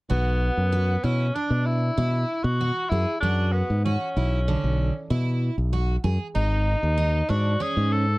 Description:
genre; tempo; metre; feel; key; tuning
progressive instrumental, band music in an uneven meter; 96 BPM; 5/4; straight; unclear; A4 = 439 Hz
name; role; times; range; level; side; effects
clear tenor saxophone; melody; 0.1-8.2 s; B3 to A4; -27 LUFS; equal; none
picked twelve-string acoustic guitar; arpeggios; 0.1-8.0 s; D3 to G#4; -31 LUFS; right 3 dB; none
modern bright fingered electric bass; bass; 0.1-8.2 s; G#1 to B2; -22 LUFS; equal; none
room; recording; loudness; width
little or no reverb; dry, close 1970s-style studio recording; -21 LUFS; side -21 dB against mid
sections
0.1-8.2 A section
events
none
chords
0.1 Bm; 6.4 G#5

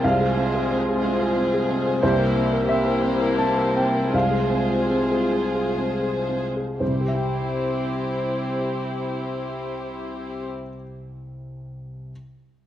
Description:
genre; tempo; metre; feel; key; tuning
classical; 54-93 BPM; 3/4; rubato; C major; A4 = 440 Hz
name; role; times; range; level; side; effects
warm baby grand piano; melody; 0.0-12.1 s; C2 to A5; -23 LUFS; equal; none
warm chamber violin section; second line; 0.0-10.4 s; G4 to C5; -28 LUFS; left 2 dB; none
dark studio viola section; accompaniment; 0.0-10.5 s; Ab3 to F4; -27 LUFS; equal; none
room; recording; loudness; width
moderate scoring stage reverb, RT60 1.9 s; worn, warbling old tape, cassette tape, warbly pitch drift; -20 LUFS; side -12 dB against mid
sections
0.0-6.8 A section; 6.8-12.1 B section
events
slowing down 1.0-6.8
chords
0.0 Fm/C; 2.0 C7; 4.1 Fm/C; 6.8 C

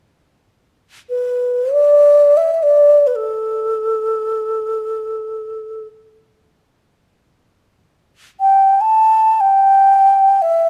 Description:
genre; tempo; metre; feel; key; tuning
chinese traditional; free time; none; none; unclear; A4 = 440 Hz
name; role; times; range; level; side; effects
low xiao; melody; 1.1-10.7 s; A4 to A5; -14 LUFS; equal; none
room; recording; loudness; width
light reverb; close, detailed microphones; -14 LUFS; mono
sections
0.2-10.7 A section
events
none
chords
none

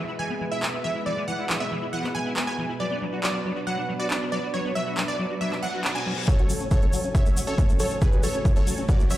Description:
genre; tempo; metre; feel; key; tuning
uplifting trance; 138 BPM; 4/4; straight; F# minor; A4 = 439 Hz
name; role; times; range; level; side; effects
supersaw stab; melody; 0.0-9.2 s; F#4 to G#5; -30 LUFS; right 1 dB; sidechain pumping, digital delay
lush unison pad; sustained chords; 0.0-9.2 s; A2 to G#5; -32 LUFS; equal; chorus, sidechain pumping
liquid acid bass; arpeggios; 0.0-9.1 s; E3 to F#4; -31 LUFS; left 2 dB; ensemble chorus, sidechain pumping, digital delay
big-room dance drum kit; drums; 0.6-9.2 s; handclaps, hi-hat; -31 LUFS; equal; high-pass filter on snare, sidechain pumping on hats, high-pass filter on hats, high-pass filter on room
reverse cymbal and riser; sound effects; 5.6-9.2 s; none; -38 LUFS; left 4 dB; none
electronic kick drum; drums; 6.3-9.0 s; none; -20 LUFS; equal; none
tube shaker; percussion; 6.3-9.2 s; none; -37 LUFS; left 2 dB; none
room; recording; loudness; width
light reverb; played on a big sound system in a bare room, large studio reverb; -22 LUFS; side -14 dB against mid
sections
0.0-6.3 A section; 6.3-9.2 B section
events
reverse cymbal 5.6-6.3; build-up 6.3-9.2; filter sweep on acid bass 6.3-9.2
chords
0.0 E; 2.8 Bm; 6.3 F#madd9

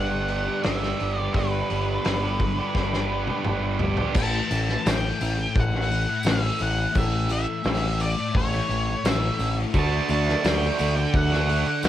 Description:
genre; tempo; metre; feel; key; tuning
rock, shoegaze and dream pop; 86 BPM; 4/4; straight; unclear; A4 = 441 Hz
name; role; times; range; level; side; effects
octave-fuzz lead guitar; melody; 0.0-11.9 s; B4 to A5; -29 LUFS; equal; distortion, cassette tape, tape echo
biting overdriven guitar; riff; 0.0-4.1, 9.7-11.9 s; G2 to G4; -27 LUFS; right 7 dB; reverse reverb, cassette tape
thick fuzz guitar; riff; 0.0-11.9 s; G2 to D4; -30 LUFS; left 8 dB; distortion, ensemble chorus, cassette tape
growling picked electric bass; bass; 0.0-11.9 s; G1 to D2; -26 LUFS; equal; overdrive
loose indie drum kit; drums; 0.3-11.9 s; crash cymbal, hi-hat, kick drum, snare drum, toms; -27 LUFS; left 1 dB; cassette tape
tambourine; percussion; 4.2-11.9 s; none; -44 LUFS; right 9 dB; none
room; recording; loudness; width
little or no reverb; home recording on cassette; -21 LUFS; side -12 dB against mid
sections
0.0-4.2 A section; 4.2-11.9 B section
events
drum fill 2.8-4.2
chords
0.0 G; 4.2 A5; 9.7 D

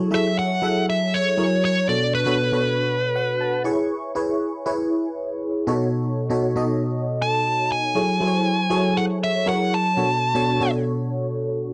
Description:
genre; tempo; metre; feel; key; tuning
pop; 119 BPM; 4/4; straight; unclear; A4 = 439 Hz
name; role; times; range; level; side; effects
FM electric piano; accompaniment; 0.0-11.7 s; B2 to C#6; -24 LUFS; equal; ensemble chorus
nasal lead guitar with a parked wah; melody; 0.1-3.6, 7.2-10.7 s; B4 to A5; -24 LUFS; equal; overdrive, slapback echo
room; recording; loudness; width
light reverb; dry, close 1970s-style studio recording; -22 LUFS; mono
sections
0.0-11.7 A section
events
FM electric piano fill 2.9-3.9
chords
0.0 F#m7; 1.4 F#7; 1.9 Bm7; 3.7 C#m7; 5.7 B7; 8.0 F#m7; 9.5 F#7; 10.0 Bm7

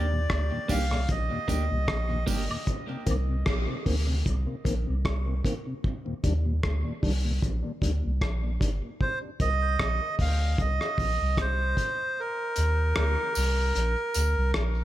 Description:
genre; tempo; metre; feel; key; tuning
dub reggae; 76 BPM; 4/4; swing 56% on 16ths; unclear; A4 = 440 Hz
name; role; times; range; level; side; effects
melodica; melody; 0.0-2.2, 9.0-14.5 s; Bb4 to F5; -30 LUFS; right 2 dB; dub echo
clean electric guitar; accompaniment; 0.0-2.4 s; Bb3 to G4; -37 LUFS; right 4 dB; dub echo
soft dub sub bass; bass; 0.0-14.8 s; G1 to Eb2; -26 LUFS; equal; none
mellow tonewheel organ; accompaniment; 0.1-14.8 s; Eb2 to D4; -35 LUFS; left 2 dB; overdrive, chorus vibrato, slow rotary speaker, high-pass filter, dub echo
cloth-damped thuddy drum kit; drums; 0.3-14.7 s; hi-hat, kick drum, rim click; -30 LUFS; equal; none
tambourine and woodblock; percussion; 0.7-2.7, 12.6-14.3 s; none; -40 LUFS; right 5 dB; dub echo
room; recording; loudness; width
light reverb, small room reverb; none; -25 LUFS; side -14 dB against mid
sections
0.0-14.8 A section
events
part muted 2.7-12.2; filter sweep on tonewheel organ 5.8-14.8; kick muted 12.2-14.8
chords
0.0 Ebmaj7; 2.7 Cm7; 5.8 Ebmaj7; 9.0 Cm7; 12.2 Ebmaj7

